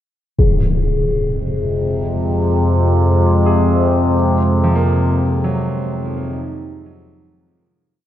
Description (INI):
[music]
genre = dark ambient drone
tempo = 64 BPM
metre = 4/4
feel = straight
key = F phrygian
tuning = A4 = 441 Hz
[part]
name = dark analog pad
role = sustained chords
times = 1.8-7.9 s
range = Ab3 to C5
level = -22 LUFS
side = equal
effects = chorus
[part]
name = overtone-sweeping drone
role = drone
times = 1.1-8.0 s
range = F2 to C3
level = -16 LUFS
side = equal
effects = chorus, built-in reverb, phaser
[part]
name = impact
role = percussion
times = 0.4-0.6 s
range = none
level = -19 LUFS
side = equal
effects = low-pass filter on sfx
[part]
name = bronze singing bowl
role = texture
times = 0.4-7.9 s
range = Ab4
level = -25 LUFS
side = left 4 dB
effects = none
[part]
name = clear concert grand piano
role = arpeggios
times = 3.5-8.1 s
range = F3 to Ab4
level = -24 LUFS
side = right 2 dB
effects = tape echo
[sound]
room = wet cathedral reverb, RT60 5.5 s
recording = dark, warm production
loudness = -14 LUFS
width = side -12 dB against mid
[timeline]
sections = 0.4-7.9 A section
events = fade-in on analog synth pad 0.4-7.9; fade-out 4.1-7.9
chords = 0.4 Fm; 4.1 Ab/F